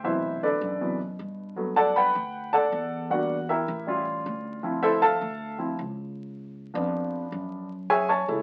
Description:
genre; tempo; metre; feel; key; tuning
Afro-Cuban jazz; 156 BPM; 4/4; straight; unclear; A4 = 441 Hz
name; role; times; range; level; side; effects
warm baby grand piano; accompaniment; 0.0-8.4 s; B2 to C#6; -27 LUFS; equal; none
upright bass; bass; 0.0-8.4 s; A1 to G2; -38 LUFS; equal; none
room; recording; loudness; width
wet studio reverb, RT60 0.6 s; very old 78 rpm record, vinyl crackle, nothing above 10.3 kHz; -27 LUFS; mono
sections
0.0-7.7 A section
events
grand piano solo 0.0-8.4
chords
0.0 D13; 1.6 Gmaj9; 3.1 Em7b5; 3.9 A7b13; 4.6 Dm9; 6.2 C#7b9; 7.7 F#m9

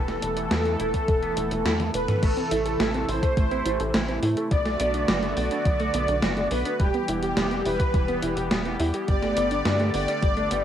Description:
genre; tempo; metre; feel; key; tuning
synthwave; 105 BPM; 4/4; straight; A dorian; A4 = 440 Hz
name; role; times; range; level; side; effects
soft supersaw; melody; 0.0-10.6 s; G4 to D5; -27 LUFS; equal; wide subtle chorus, cassette tape, analog delay
lush unison pad; sustained chords; 0.0-10.6 s; C3 to A4; -30 LUFS; equal; chorus, sidechain pumping, cassette tape
tight sequencer bass; bass; 0.0-10.6 s; E1 to A2; -30 LUFS; equal; none
twangy electric guitar; riff; 0.1-10.6 s; E3 to F#4; -38 LUFS; right 1 dB; analog chorus, cassette tape, analog delay
gated 80s digital drum machine; drums; 0.1-10.6 s; crash cymbal, hi-hat, snare drum, toms; -28 LUFS; equal; gated reverb, gated reverb snare, cassette tape
electronic kick drum; drums; 0.9-10.3 s; none; -24 LUFS; equal; cassette tape
soft round pluck; arpeggios; 2.2-10.6 s; F#3 to A4; -31 LUFS; right 2 dB; chorus, cassette tape, analog delay
room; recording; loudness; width
moderate booth ambience, RT60 0.2 s; home recording on cassette; -22 LUFS; side -10 dB against mid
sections
0.0-2.2 A section; 2.2-10.6 B section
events
drum fill 1.7-2.2; band accent 1.7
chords
0.0 Esus4; 2.2 Am; 4.5 Bm7; 6.8 Em; 9.1 Gadd9

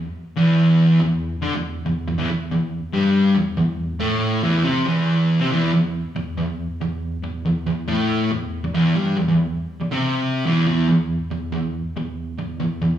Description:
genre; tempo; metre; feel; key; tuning
metal; 93 BPM; 4/4; swing 66% on 8ths; E minor; A4 = 440 Hz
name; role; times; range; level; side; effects
fuzz guitar; solo; 0.0-13.0 s; E2 to D4; -18 LUFS; equal; distortion
room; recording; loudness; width
wet large studio reverb, RT60 1.4 s; band playing live in one room, studio reverb; -18 LUFS; side -10 dB against mid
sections
0.0-5.5 A section; 5.5-13.0 B section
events
none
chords
0.0 Em; 5.5 N.C.

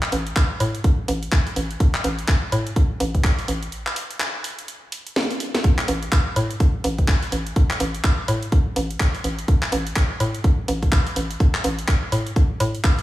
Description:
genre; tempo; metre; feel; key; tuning
minimal techno; 125 BPM; 4/4; swing 60% on 16ths; unclear; A4 = 441 Hz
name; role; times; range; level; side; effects
house drum kit; drums; 0.0-13.0 s; handclaps, hi-hat, snare drum; -26 LUFS; equal; none
hollow knocking FM bass; bass; 0.1-12.8 s; A1 to A2; -23 LUFS; equal; tube saturation, sidechain pumping
electronic kick drum; drums; 0.4-13.0 s; none; -18 LUFS; equal; none
room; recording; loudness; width
light reverb; small room reverb; -19 LUFS; side -16 dB against mid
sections
0.0-13.0 A section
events
break 3.7-5.6; drum fill 5.2-5.6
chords
none

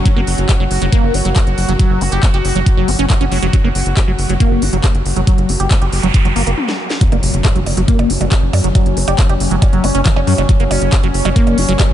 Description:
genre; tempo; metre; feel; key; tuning
psychedelic trance; 138 BPM; 4/4; straight; F# major; A4 = 442 Hz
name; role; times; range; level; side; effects
bubbling stepped-filter texture; sustained chords; 0.0-11.9 s; F#3 to F#4; -22 LUFS; left 1 dB; chorus, built-in reverb, sidechain pumping
tight sequencer bass; bass; 0.0-11.9 s; F#1 to F#2; -17 LUFS; equal; none
liquid acid bass; riff; 0.1-11.8 s; E3 to G4; -19 LUFS; right 1 dB; phaser, auto-pan, sidechain pumping, tape echo
electronic kick drum; drums; 0.1-11.9 s; none; -12 LUFS; equal; none
techno drum kit; drums; 0.1-11.9 s; handclaps, hi-hat, percussion blips, snare drum, toms; -22 LUFS; equal; overdrive
noise sweep and impact; sound effects; 5.6-8.8 s; none; -25 LUFS; right 1 dB; none
room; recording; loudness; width
light reverb, digital ambience; nothing above 10.9 kHz; -11 LUFS; side -11 dB against mid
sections
0.0-7.0 A section; 7.0-11.9 B section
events
noise sweep 5.6-7.0; drum fill 6.6-7.0; stop 6.6-7.0; drop 7.0-11.9; impact 7.0-8.8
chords
0.0 F#5

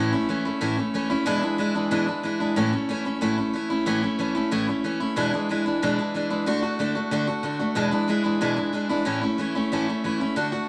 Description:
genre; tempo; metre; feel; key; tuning
rock; 185 BPM; 4/4; straight; A major; A4 = 440 Hz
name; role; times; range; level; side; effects
picked steel-string acoustic guitar; solo; 0.0-10.7 s; E2 to F#4; -25 LUFS; equal; none
room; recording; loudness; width
moderate small room reverb, RT60 0.5 s; vinyl crackle; -25 LUFS; mono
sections
0.0-9.1 A section; 9.1-10.7 B section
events
none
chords
0.0 A; 1.3 E7; 2.6 A; 5.2 E7; 6.5 D; 7.8 E7; 9.1 A

